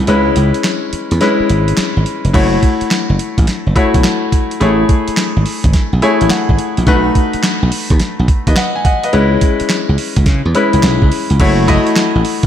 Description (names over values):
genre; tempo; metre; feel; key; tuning
R&B, new jack swing; 106 BPM; 4/4; swing 66% on 16ths; unclear; A4 = 439 Hz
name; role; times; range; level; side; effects
bright concert grand piano; accompaniment; 0.0-12.5 s; G#3 to G#5; -14 LUFS; left 2 dB; none
slap bass; bass; 0.0-12.5 s; E#1 to C#3; -14 LUFS; equal; none
dusty soul sampler-style drum kit; drums; 0.1-12.5 s; crash cymbal, handclaps, hi-hat, kick drum, snare drum; -15 LUFS; right 1 dB; none
room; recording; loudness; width
moderate plate reverb, RT60 1.8 s, digital ambience; dreamy mix soaked in reverb; -11 LUFS; side -10 dB against mid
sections
0.0-2.3 A section; 2.3-11.4 B section; 11.4-12.5 C section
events
break 0.1-2.3; grand piano fill 5.7-6.9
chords
0.1 C#m7; 2.3 F#m7; 4.6 Amaj7; 6.9 B7; 9.1 C#m7; 11.4 F#m7